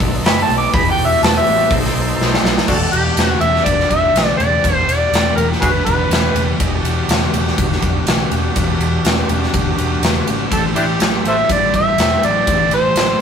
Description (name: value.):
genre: blues rock power trio and southern rock.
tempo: 123 BPM.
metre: 4/4.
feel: straight.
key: E minor.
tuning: A4 = 440 Hz.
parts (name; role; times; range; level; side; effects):
overdriven tonewheel organ; sustained chords; 0.0-13.2 s; D4 to F#5; -26 LUFS; right 1 dB; none.
thick fuzz guitar; riff; 0.0-13.2 s; E2 to B3; -22 LUFS; left 1 dB; distortion.
vintage muted picked electric bass; bass; 0.0-13.1 s; E1 to B1; -22 LUFS; equal; none.
big rock drum kit; drums; 0.0-13.1 s; crash cymbal, hi-hat, kick drum, ride cymbal, snare drum; -17 LUFS; equal; none.
overdriven harmonica; melody; 0.3-6.5, 10.5-13.2 s; D4 to D6; -16 LUFS; equal; none.
room: moderate studio reverb, RT60 0.6 s.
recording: rough rehearsal-room recording.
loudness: -13 LUFS.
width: side -7 dB against mid.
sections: 0.0-2.7 A section; 2.7-13.2 B section.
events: harmonica solo 0.0-2.7; drum fill 2.2-2.7.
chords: 0.0 B7; 0.7 Em9; 1.7 B7b9; 2.7 Em9; 10.5 Am7.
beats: 0.25 | 0.73 1.22 1.71 2.19 | 2.68 3.17 3.66 4.15 | 4.64 5.13 5.62 6.11 | 6.60 7.09 7.58 8.07 | 8.56 9.05 9.54 10.03 | 10.51 11.00 11.49 11.98 | 12.47 12.96.